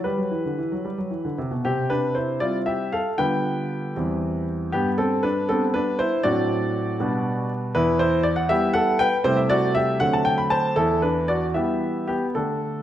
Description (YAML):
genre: classical-period piano sonatina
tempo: 78 BPM (dotted quarters)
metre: 6/8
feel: rubato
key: C major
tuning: A4 = 440 Hz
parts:
  - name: clear grand piano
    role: solo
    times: 0.0-12.8 s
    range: E2 to B5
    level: -20 LUFS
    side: equal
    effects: none
room: wet recital hall reverb, RT60 1.4 s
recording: none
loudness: -20 LUFS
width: side -11 dB against mid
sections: 0.0-1.6 A section; 1.6-12.8 B section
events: none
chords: 0.1 G; 1.6 C; 3.2 G7/D; 4.0 C/E; 4.7 G; 6.2 D7/A; 7.0 G/B; 7.8 Em; 9.3 Am7/C; 10.0 D7; 10.8 Em